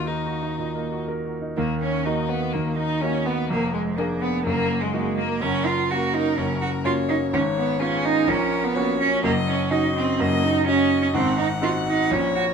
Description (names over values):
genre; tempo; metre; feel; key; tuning
quick classical-period movement for piano trio; 125 BPM; 4/4; straight; Eb minor; A4 = 441 Hz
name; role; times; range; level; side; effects
rich violin; melody; 0.0-12.5 s; Ab3 to Gb5; -28 LUFS; left 6 dB; none
rich cello; second line; 0.0-12.4 s; Ab3 to Gb4; -24 LUFS; right 5 dB; none
clear concert grand piano; accompaniment; 0.0-12.5 s; F1 to Bb4; -24 LUFS; equal; none
room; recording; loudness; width
moderate large studio reverb, RT60 1.0 s; minimal, uncompressed stereo recording; -20 LUFS; side -6 dB against mid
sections
0.0-1.6 A section; 1.6-12.5 B section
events
none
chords
0.0 Ebm; 3.5 Bb7/F; 4.5 Ebm/Gb; 5.4 Gb; 7.3 Db7/Ab; 8.3 Gb/Bb; 9.2 Ebm7/Gb; 11.1 Ab7